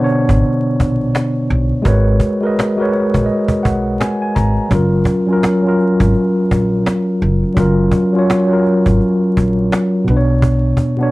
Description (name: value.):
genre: lo-fi hip hop.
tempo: 84 BPM.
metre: 4/4.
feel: swing 64% on 16ths.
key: F# major.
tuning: A4 = 443 Hz.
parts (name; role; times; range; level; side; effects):
mellow tine electric piano; accompaniment; 0.0-11.1 s; B2 to A#5; -14 LUFS; equal; medium stereo tremolo, cassette tape, plate reverb.
cajon; drums; 0.1-11.1 s; none; -18 LUFS; equal; none.
upright bass; bass; 0.3-10.7 s; F#1 to B1; -16 LUFS; equal; none.
room: wet small room reverb, RT60 0.6 s.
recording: vinyl crackle.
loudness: -12 LUFS.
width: side -20 dB against mid.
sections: 0.0-11.1 A section.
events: none.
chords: 0.0 Bmadd9; 1.9 G#m11; 4.7 F#maj7; 10.1 Bmadd9.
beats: 0.43 1.14 | 1.85 2.57 3.28 4.00 | 4.71 5.43 6.14 6.85 | 7.57 8.28 9.00 9.71 | 10.43.